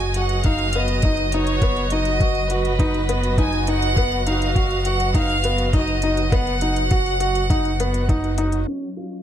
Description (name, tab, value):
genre	piano and strings electronica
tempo	102 BPM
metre	4/4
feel	straight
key	unclear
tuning	A4 = 440 Hz
part	bright chamber violin section	melody	0.0-8.4 s	B4 to G#5	-24 LUFS	equal	none
part	dark chamber string section	sustained chords	0.0-9.2 s	F#3 to D#5	-30 LUFS	right 1 dB	sidechain pumping
part	felt-muted upright piano	riff	0.0-9.2 s	B3 to F#4	-24 LUFS	right 1 dB	ping-pong delay
part	round analog bass	bass	0.0-8.6 s	F#1	-24 LUFS	equal	sidechain pumping
part	electronic hi-hat	drums	0.0-9.2 s	none	-35 LUFS	left 2 dB	low-pass filter on hats, low-pass filter on room
part	electronic kick drum	drums	0.4-8.2 s	none	-19 LUFS	equal	none
room	light reverb, small room reverb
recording	low-pass filter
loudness	-18 LUFS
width	side -10 dB against mid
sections	0.0-8.7 A section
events	none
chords	0.0 B/F#; 8.7 F#maj7(no3)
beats	0.44 1.03 | 1.62 2.21 2.79 3.38 | 3.97 4.56 5.15 5.74 | 6.32 6.91 7.50 8.09 | 8.68